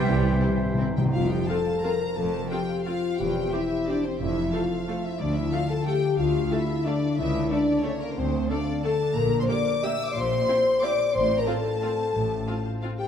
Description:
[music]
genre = classical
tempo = 156-198 BPM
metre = 3/4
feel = rubato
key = F major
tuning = A4 = 440 Hz
[part]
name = warm studio violin section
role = melody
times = 0.0-12.9 s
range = C5 to G5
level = -43 LUFS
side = left 3 dB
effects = none
[part]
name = clear oboe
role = second line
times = 0.0-0.9 s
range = C5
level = -37 LUFS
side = right 1 dB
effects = none
[part]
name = flute section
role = second line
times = 0.0-1.0 s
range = E5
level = -40 LUFS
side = right 1 dB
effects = none
[part]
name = warm clarinet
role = second line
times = 0.0-0.8 s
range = G4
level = -37 LUFS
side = right 4 dB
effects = none
[part]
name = mellow bassoon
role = accompaniment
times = 0.0-0.9 s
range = E3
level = -35 LUFS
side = left 1 dB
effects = none
[part]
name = rich studio viola section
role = accompaniment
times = 0.0-12.9 s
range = G3 to A4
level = -36 LUFS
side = right 2 dB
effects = none
[part]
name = dark French horn section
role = sustained chords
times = 0.0-13.1 s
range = G3 to E5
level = -26 LUFS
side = left 3 dB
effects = none
[part]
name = mellow trombone section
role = sustained chords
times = 0.0-1.0 s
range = E3 to C4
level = -37 LUFS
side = equal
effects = none
[part]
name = concert harp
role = arpeggios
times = 0.0-13.1 s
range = A2 to F5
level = -31 LUFS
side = left 3 dB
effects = none
[part]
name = timpani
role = percussion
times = 0.0-1.1 s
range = C3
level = -26 LUFS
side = equal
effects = none
[part]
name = clear studio cello section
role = bass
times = 0.1-12.4 s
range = C#2 to C3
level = -33 LUFS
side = right 3 dB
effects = none
[part]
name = warm studio double bass section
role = bass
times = 0.1-12.4 s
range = E1 to D2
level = -33 LUFS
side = right 3 dB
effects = none
[part]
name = rich studio violin section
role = second line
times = 0.4-13.1 s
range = C4 to E6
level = -35 LUFS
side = left 1 dB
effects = none
[sound]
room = wet concert hall reverb, RT60 1.9 s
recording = none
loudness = -22 LUFS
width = side -8 dB against mid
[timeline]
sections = 0.0-1.1 A section; 1.1-13.1 B section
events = timpani fill 0.0-1.1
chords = 0.0 C; 1.1 F; 3.2 C/E; 4.2 F; 5.2 Dm; 7.2 A/C#; 8.2 Dm; 9.2 Gm/Bb; 11.1 F/A

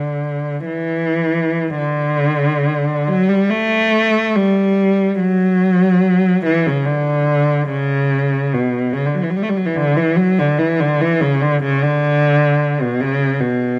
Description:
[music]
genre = classical, free, expressive piece for unaccompanied cello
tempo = 72 BPM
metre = 4/4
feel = uneven beats, rubato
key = D major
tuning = A4 = 441 Hz
[part]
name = rich cello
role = solo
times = 0.0-13.8 s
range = B2 to A3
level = -16 LUFS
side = equal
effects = none
[sound]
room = light reverb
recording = close, detailed microphones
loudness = -17 LUFS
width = mono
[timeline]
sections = 0.0-1.8 A section; 1.8-13.8 A section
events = none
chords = none

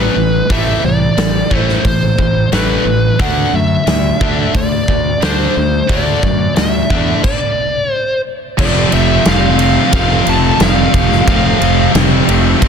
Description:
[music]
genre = hard rock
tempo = 89 BPM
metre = 4/4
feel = straight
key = unclear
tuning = A4 = 440 Hz
[part]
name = bluesy overdriven lead guitar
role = melody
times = 0.0-11.9 s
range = B4 to A5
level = -18 LUFS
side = equal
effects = distortion, tape echo
[part]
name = cranked stack guitar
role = riff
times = 0.0-12.7 s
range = F2 to D4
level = -19 LUFS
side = right 10 dB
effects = overdrive
[part]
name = distorted electric guitar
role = riff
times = 0.0-12.7 s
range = F2 to D4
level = -18 LUFS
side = left 12 dB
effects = overdrive
[part]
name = fuzz fingered electric bass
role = bass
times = 0.0-12.7 s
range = F1 to F#2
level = -17 LUFS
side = equal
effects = overdrive
[part]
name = huge arena drum kit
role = drums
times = 0.5-12.7 s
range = crash cymbal, hi-hat, kick drum, ride cymbal, snare drum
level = -16 LUFS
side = equal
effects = soft clipping on kick, soft clipping on snare
[part]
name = scooped high-gain guitar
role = riff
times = 8.6-12.7 s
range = F2 to C4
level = -19 LUFS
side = right 1 dB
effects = distortion
[sound]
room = light reverb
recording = dense, heavily limited modern master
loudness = -10 LUFS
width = side -7 dB against mid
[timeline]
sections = 0.0-8.6 A section; 8.6-12.7 B section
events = stop 7.2-8.6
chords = 0.0 Asus2; 3.2 D5; 8.6 F

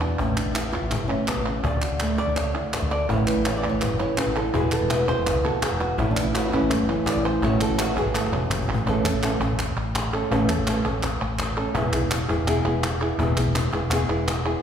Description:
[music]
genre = flamenco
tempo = 166 BPM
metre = 4/4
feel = straight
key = A major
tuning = A4 = 439 Hz
[part]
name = flamenco guitar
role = melody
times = 0.0-14.6 s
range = A2 to D5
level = -25 LUFS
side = equal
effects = none
[part]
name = woody fretless electric bass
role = bass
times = 0.0-14.5 s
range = E1 to E2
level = -27 LUFS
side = equal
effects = none
[part]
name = palmas hand claps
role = percussion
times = 0.0-14.6 s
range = none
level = -30 LUFS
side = right 2 dB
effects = none
[part]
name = cajon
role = percussion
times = 0.2-14.5 s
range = none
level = -29 LUFS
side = left 2 dB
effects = none
[part]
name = flamenco guitar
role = stabs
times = 3.1-8.9 s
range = B2 to F#4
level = -27 LUFS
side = right 1 dB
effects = none
[sound]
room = wet recital hall reverb, RT60 1.7 s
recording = recorded in a church or concert hall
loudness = -21 LUFS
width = side -8 dB against mid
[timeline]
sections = 0.0-8.9 A section; 8.9-14.6 B section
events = nylon-string guitar solo 0.0-8.9; drum fill 8.2-8.9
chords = 0.2 A; 1.6 D5; 3.1 A; 4.5 Eadd9; 6.0 A; 7.4 A6; 8.9 A; 11.8 E

